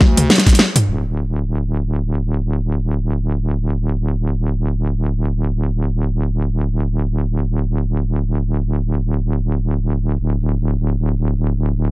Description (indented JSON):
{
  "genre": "glitch hop",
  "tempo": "free time",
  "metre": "none",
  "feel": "none",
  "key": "unclear",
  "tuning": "A4 = 441 Hz",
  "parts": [
    { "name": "wobble bass", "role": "bass", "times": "0.0-11.9 s", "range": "D1 to D2", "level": "-17 LUFS", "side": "equal", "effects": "chorus, tube saturation" },
    { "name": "dubstep drum kit", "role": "drums", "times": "0.0-0.9 s", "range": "hi-hat, snare drum, toms", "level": "-13 LUFS", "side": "equal", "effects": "low-pass filter on hats, low-pass filter on snare, low-pass filter on toms" },
    { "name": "electronic kick drum", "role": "drums", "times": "0.0-0.6 s", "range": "none", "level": "-12 LUFS", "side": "equal", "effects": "none" }
  ],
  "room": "little or no reverb",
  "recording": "dry, gritty hardware recording",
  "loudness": "-16 LUFS",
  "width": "side -25 dB against mid",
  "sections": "0.9-11.9 A section",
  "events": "drum fill 0.0-0.9",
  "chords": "none"
}